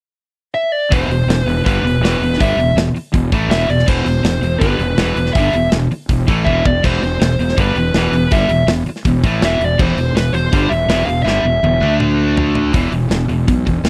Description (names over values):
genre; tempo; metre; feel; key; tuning
heavy metal; 162 BPM; 4/4; straight; E minor; A4 = 440 Hz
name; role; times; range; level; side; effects
high-gain lead guitar; melody; 0.5-11.9 s; B4 to F5; -21 LUFS; equal; distortion, slapback echo
distorted electric guitar; riff; 0.9-13.9 s; E2 to D4; -23 LUFS; equal; overdrive
distorted electric guitar; riff; 0.9-13.9 s; E2 to D4; -23 LUFS; equal; overdrive
fuzz fingered electric bass; bass; 0.9-13.9 s; E1 to D2; -21 LUFS; equal; overdrive
tight metal drum kit; drums; 0.9-13.9 s; crash cymbal, hi-hat, kick drum, snare drum, toms; -20 LUFS; equal; none
room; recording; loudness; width
little or no reverb; dry, close 1970s-style studio recording; -15 LUFS; mono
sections
0.9-12.7 A section; 12.7-13.9 B section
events
drum fill 6.5-6.8, 11.3-12.7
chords
0.0 N.C.; 0.9 Em; 11.8 D5; 12.7 E5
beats
0.17 0.55 | 0.92 1.29 1.66 2.03 | 2.40 2.77 3.14 3.51 | 3.88 4.25 4.62 4.99 | 5.36 5.72 6.09 6.46 | 6.83 7.20 7.57 7.94 | 8.31 8.68 9.05 9.42 | 9.79 10.16 10.53 10.90 | 11.27 11.64 12.01 12.38 | 12.75 13.12 13.49 13.86